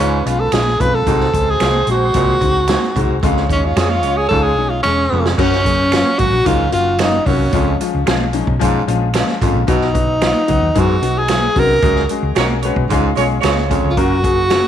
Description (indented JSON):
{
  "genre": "uptempo 1960s-style soul",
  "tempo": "112 BPM",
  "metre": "4/4",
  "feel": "straight",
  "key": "F# major",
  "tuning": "A4 = 444 Hz",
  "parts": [
    { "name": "breathy tenor saxophone", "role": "melody", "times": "0.0-14.7 s", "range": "C#4 to B4", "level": "-17 LUFS", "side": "right 1 dB", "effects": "tape echo" },
    { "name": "warm horn section", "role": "second line", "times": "0.0-5.1, 12.4-13.9 s", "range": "G#3 to C#5", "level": "-23 LUFS", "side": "right 10 dB", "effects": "none" },
    { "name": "warm baby grand piano", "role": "accompaniment", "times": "0.0-14.7 s", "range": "E#3 to B4", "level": "-20 LUFS", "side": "left 9 dB", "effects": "none" },
    { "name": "warm baritone saxophone", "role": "riff", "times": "0.0-14.2 s", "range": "E#2 to B2", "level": "-24 LUFS", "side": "right 8 dB", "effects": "none" },
    { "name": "hollow-body short-scale fingered electric bass", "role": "bass", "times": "0.0-14.6 s", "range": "E1 to F#2", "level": "-19 LUFS", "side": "equal", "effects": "none" },
    { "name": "swinging big-band drum kit", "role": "drums", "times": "0.3-14.6 s", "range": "crash cymbal, hi-hat, kick drum, snare drum", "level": "-20 LUFS", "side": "right 2 dB", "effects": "none" },
    { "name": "finger snaps", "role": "percussion", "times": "0.5-14.6 s", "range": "none", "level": "-28 LUFS", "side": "right 7 dB", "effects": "none" },
    { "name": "vibraphone with soft mallets", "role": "second line", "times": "5.4-14.7 s", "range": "C#4 to A#4", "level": "-26 LUFS", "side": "left 8 dB", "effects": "none" }
  ],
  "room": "light reverb, studio ambience",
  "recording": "1960s-style stereo with parts hard left and right, vinyl crackle, faint mains hum",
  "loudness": "-13 LUFS",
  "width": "side -10 dB against mid",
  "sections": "0.0-5.4 A section; 5.4-14.7 B section",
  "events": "tenor saxophone solo 0.0-5.4; drum fill 4.3-5.4; band accent 11.8-14.0",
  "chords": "0.0 C#; 1.1 G#7; 3.2 C#; 5.4 F#; 7.5 C#; 9.7 B; 11.8 C#sus4; 12.9 C#; 14.0 F#"
}